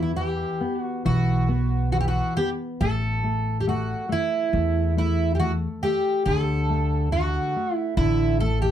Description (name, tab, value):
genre	fado-style ballad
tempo	69 BPM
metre	4/4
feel	rubato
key	unclear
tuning	A4 = 440 Hz
part	fingerpicked twelve-string acoustic guitar	melody	0.0-8.7 s	E4 to A4	-25 LUFS	right 2 dB	none
part	nylon-string guitar	accompaniment	0.0-8.7 s	D3 to B3	-28 LUFS	left 2 dB	none
part	upright bass	bass	0.0-8.7 s	A1 to E2	-24 LUFS	equal	none
room	little or no reverb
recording	close, detailed microphones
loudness	-21 LUFS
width	side -10 dB against mid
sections	0.0-8.7 A section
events	none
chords	0.0 Em; 2.8 A5; 6.3 D